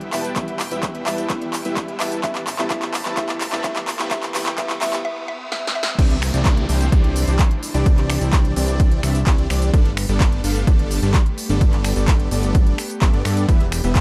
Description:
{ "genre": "EDM, festival progressive house", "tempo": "128 BPM", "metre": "4/4", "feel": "straight", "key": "C major", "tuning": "A4 = 442 Hz", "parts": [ { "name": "warm studio string section", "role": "sustained chords", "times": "0.0-14.0 s", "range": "E3 to A5", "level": "-36 LUFS", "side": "equal", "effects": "none" }, { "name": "supersaw chords", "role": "riff", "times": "0.0-14.0 s", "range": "E3 to A5", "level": "-29 LUFS", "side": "equal", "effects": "sidechain pumping, low-pass filter, delay" }, { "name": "fat analog bass", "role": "bass", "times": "0.0-14.0 s", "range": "E1 to G2", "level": "-25 LUFS", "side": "equal", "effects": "sidechain pumping" }, { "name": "big-room dance drum kit", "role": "drums", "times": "0.0-14.0 s", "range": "crash cymbal, finger snaps, handclaps, hi-hat, shaker, snare drum", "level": "-28 LUFS", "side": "equal", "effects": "none" }, { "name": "riser and downlifter", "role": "sound effects", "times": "1.0-9.7 s", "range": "none", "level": "-37 LUFS", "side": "equal", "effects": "none" }, { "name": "mallet-like synth pluck", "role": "melody", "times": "0.1-5.9 s", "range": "E5", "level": "-33 LUFS", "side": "equal", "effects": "chorus, phaser, delay" }, { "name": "dark grand piano", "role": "accompaniment", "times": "0.1-5.0 s", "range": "E3 to E4", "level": "-34 LUFS", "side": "equal", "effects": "sidechain pumping, delay" }, { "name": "electronic kick drum", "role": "drums", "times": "0.4-14.0 s", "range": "none", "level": "-19 LUFS", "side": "equal", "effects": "none" } ], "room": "light reverb, digital ambience", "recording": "dark, warm production, high-pass filter", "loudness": "-20 LUFS", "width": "mono", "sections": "0.0-6.0 A section; 6.0-14.0 B section", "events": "build-up 0.0-6.0; drum fill 0.0-5.0, 5.5-6.0; filter sweep on supersaw synth 0.0-6.0; drop 6.0-14.0", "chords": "0.0 Em; 2.2 Am; 6.0 Cadd9; 9.7 Gadd9; 13.5 Em" }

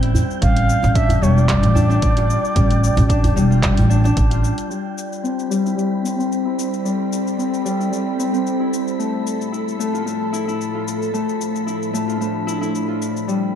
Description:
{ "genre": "organic downtempo", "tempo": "112 BPM", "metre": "4/4", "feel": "swing 54% on 16ths", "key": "A minor", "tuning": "A4 = 440 Hz", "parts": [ { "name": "Celtic harp", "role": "arpeggios", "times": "0.0-13.6 s", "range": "G3 to F4", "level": "-21 LUFS", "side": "left 4 dB", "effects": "low-pass filter, tape echo" }, { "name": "upright bass", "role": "bass", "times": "0.0-4.5 s", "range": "E1 to A1", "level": "-16 LUFS", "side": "right 1 dB", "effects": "none" }, { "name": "deep house drum kit", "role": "drums", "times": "0.0-13.4 s", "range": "cabasa, handclaps, hi-hat", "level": "-30 LUFS", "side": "left 1 dB", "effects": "overdrive, small room ambience" }, { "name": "wind-like tuned noise texture", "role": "texture", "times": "0.0-13.6 s", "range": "G5 to B5", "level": "-35 LUFS", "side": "right 1 dB", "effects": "built-in reverb" }, { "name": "djembe", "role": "percussion", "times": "0.1-4.1 s", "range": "none", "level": "-24 LUFS", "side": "equal", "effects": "none" }, { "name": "bright reedy bansuri", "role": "melody", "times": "0.4-4.2 s", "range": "D5 to F5", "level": "-24 LUFS", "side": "right 2 dB", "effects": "ping-pong delay" }, { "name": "electronic kick drum", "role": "drums", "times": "0.4-4.3 s", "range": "none", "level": "-21 LUFS", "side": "right 1 dB", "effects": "overdrive, small room ambience" }, { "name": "bowed-like drone", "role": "sustained chords", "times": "6.0-13.6 s", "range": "A2 to E5", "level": "-24 LUFS", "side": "right 2 dB", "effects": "built-in reverb, sidechain pumping" } ], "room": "light reverb, small room ambience", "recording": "dark, warm production", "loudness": "-16 LUFS", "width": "side -9 dB against mid", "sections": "0.0-4.7 A section; 4.7-13.6 B section", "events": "filter sweep on harp 4.7-13.6", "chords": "0.4 G5; 4.7 Am7; 9.0 Fmaj7/A" }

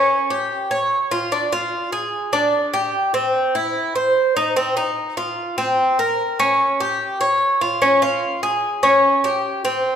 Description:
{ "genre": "latin", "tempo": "148 BPM", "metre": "4/4", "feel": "straight", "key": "unclear", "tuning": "A4 = 436 Hz", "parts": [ { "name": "Cuban tres", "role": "solo", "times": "0.0-10.0 s", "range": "C4 to Db5", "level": "-17 LUFS", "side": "equal", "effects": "none" } ], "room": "wet recital hall reverb, RT60 1.8 s", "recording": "recorded in a church or concert hall", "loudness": "-17 LUFS", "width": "side -8 dB against mid", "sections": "0.0-10.0 A section", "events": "none", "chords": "none" }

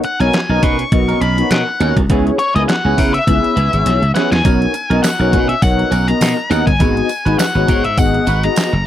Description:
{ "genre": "early-eighties boogie funk", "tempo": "102 BPM", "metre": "4/4", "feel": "swing 56% on 16ths", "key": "B major", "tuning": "A4 = 440 Hz", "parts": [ { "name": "octave-fuzz lead guitar", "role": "melody", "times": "0.0-8.8 s", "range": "C#5 to C#6", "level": "-19 LUFS", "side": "left 3 dB", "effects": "distortion" }, { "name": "mellow synth brass", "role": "accompaniment", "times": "0.0-8.7 s", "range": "B3 to D#5", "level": "-19 LUFS", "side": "left 2 dB", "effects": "chorus" }, { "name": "electric guitar at the edge of break-up", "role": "riff", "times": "0.0-8.8 s", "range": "B3 to C#5", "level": "-24 LUFS", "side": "right 8 dB", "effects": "lush chorus" }, { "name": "detuned 8-bit digital drum machine", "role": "drums", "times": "0.0-8.7 s", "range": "handclaps, hi-hat, kick drum, snare drum", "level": "-17 LUFS", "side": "equal", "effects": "none" }, { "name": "slap bass", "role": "bass", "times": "0.2-8.8 s", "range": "F#1 to C#3", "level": "-16 LUFS", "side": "equal", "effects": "none" }, { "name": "tambourine", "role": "percussion", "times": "4.5-8.7 s", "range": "none", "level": "-31 LUFS", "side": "right 20 dB", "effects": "none" } ], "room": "little or no reverb", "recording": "dry, close 1970s-style studio recording", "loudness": "-12 LUFS", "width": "side -11 dB against mid", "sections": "0.0-8.9 A section", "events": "drum fill 3.9-4.4", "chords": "0.0 Bmaj9; 2.1 C#m7; 4.4 Bmaj9; 6.8 G#m7" }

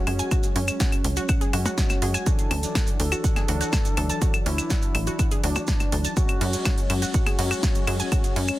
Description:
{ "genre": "melodic techno", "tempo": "123 BPM", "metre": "4/4", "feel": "straight", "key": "F# minor", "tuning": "A4 = 440 Hz", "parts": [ { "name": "expressive synth lead", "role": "melody", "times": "0.0-8.6 s", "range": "C#4 to A4", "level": "-33 LUFS", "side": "equal", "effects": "chorus, sidechain pumping, digital delay" }, { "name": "analog synth brass", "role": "stabs", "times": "0.0-8.6 s", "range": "E3 to D4", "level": "-32 LUFS", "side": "left 3 dB", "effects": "chorus, sidechain pumping, tape echo" }, { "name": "wide unison pluck", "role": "arpeggios", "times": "0.1-8.4 s", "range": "C#4 to A5", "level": "-33 LUFS", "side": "right 1 dB", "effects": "sidechain pumping, tape echo" }, { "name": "tight sequencer bass", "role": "bass", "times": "0.1-8.5 s", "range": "A1 to F#2", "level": "-25 LUFS", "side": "equal", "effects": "sidechain pumping" }, { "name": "techno drum kit", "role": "drums", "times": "0.1-8.6 s", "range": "claves, hi-hat, percussion blips, ride cymbal, snare drum", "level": "-28 LUFS", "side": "equal", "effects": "none" }, { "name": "maracas", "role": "percussion", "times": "0.2-8.6 s", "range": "none", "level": "-35 LUFS", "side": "right 4 dB", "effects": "none" }, { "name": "electronic kick drum", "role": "drums", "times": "0.3-8.2 s", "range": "none", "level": "-23 LUFS", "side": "equal", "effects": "none" } ], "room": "little or no reverb", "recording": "dense, heavily limited modern master", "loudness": "-21 LUFS", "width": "side -16 dB against mid", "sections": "0.0-8.6 A section", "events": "none", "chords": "0.0 F#sus2; 2.3 Dadd9; 6.2 F#sus2" }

